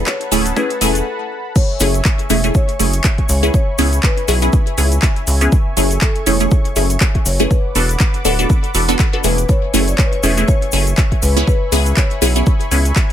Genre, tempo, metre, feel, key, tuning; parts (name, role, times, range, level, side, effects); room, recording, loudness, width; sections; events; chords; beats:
deep house; 121 BPM; 4/4; swing 56% on 16ths; F# minor; A4 = 439 Hz
marimba with medium mallets; melody; 0.0-12.9 s; A4 to E5; -26 LUFS; left 3 dB; dub echo
warm analog pad; sustained chords; 0.0-13.1 s; E5 to D6; -28 LUFS; equal; chorus, sidechain pumping
filtered dub chord stab; stabs; 0.0-12.9 s; A3 to A4; -18 LUFS; equal; phaser, sidechain pumping, ping-pong delay
rubbery square bass; bass; 0.0-12.9 s; D1 to C#2; -16 LUFS; equal; sidechain pumping
warm studio violin section; texture; 0.0-1.1 s; C#6; -41 LUFS; left 1 dB
deep house drum kit; drums; 0.1-13.1 s; crash cymbal, handclaps, hi-hat; -22 LUFS; equal; overdrive
electronic kick drum; drums; 0.1-13.1 s; -15 LUFS; equal; overdrive, high-pass filter on kick
cabasa; percussion; 0.1-13.1 s; -25 LUFS; left 3 dB
little or no reverb; -13 LUFS; side -10 dB against mid
0.0-1.6 A section; 1.6-13.1 B section
build-up 0.0-1.6; break 1.1-1.6; drop 1.6-13.1
0.0 E7sus4; 1.6 F#m9; 3.3 C#m7; 5.5 F#m9; 7.5 E7sus4; 9.5 F#m9; 11.2 C#m7
0.07 0.56 1.06 | 1.56 2.05 2.55 3.04 | 3.54 4.04 4.53 5.03 | 5.52 6.02 6.51 7.01 | 7.51 8.00 8.50 8.99 | 9.49 9.99 10.48 10.98 | 11.47 11.97 12.46 12.96